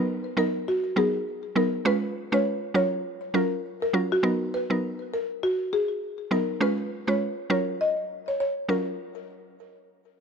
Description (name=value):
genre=afrobeats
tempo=101 BPM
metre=4/4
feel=swing 58% on 16ths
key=F# major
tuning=A4 = 440 Hz
part: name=mallet-like synth pluck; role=accompaniment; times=0.0-9.0 s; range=F#3 to B4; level=-26 LUFS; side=right 2 dB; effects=chorus
part: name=buzzing marimba with medium mallets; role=melody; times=0.4-8.8 s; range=F#4 to D#5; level=-27 LUFS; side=left 1 dB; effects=ping-pong delay
room=light reverb, small room ambience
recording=none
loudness=-24 LUFS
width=side -6 dB against mid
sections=0.0-4.2 A section; 4.2-9.0 B section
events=none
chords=0.0 Bmaj7; 1.9 C#7; 2.7 F#maj7; 4.2 Bmaj7; 6.6 C#7; 7.5 F#maj7